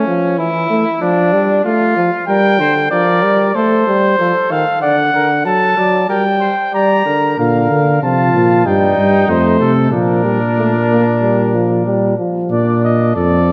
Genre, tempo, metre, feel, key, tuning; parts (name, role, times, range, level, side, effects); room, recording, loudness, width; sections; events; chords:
classical, imitative canzona for brass ensemble; 94 BPM; 4/4; straight; G minor, Bb major from 7.4 s; A4 = 440 Hz
mellow trumpet; second line; 0.0-13.5 s; C#4 to D5; -21 LUFS; equal
clear euphonium; accompaniment; 0.0-12.5 s; D3 to Bb3; -18 LUFS; equal
mellow trumpet; melody; 2.3-13.5 s; Bb4 to Bb5; -19 LUFS; equal
mellow bass trombone; bass; 7.4-13.5 s; F2 to D3; -17 LUFS; equal
moderate scoring stage reverb, RT60 2.1 s; -14 LUFS; mono
0.0-7.4 A section; 7.4-12.5 B section; 12.5-13.5 C section
0.0 A; 1.0 Dm/F; 2.3 Gm; 3.6 Adim; 4.8 D; 6.1 Gm; 7.4 Bb; 8.7 Eb/G; 9.3 F; 9.9 Bb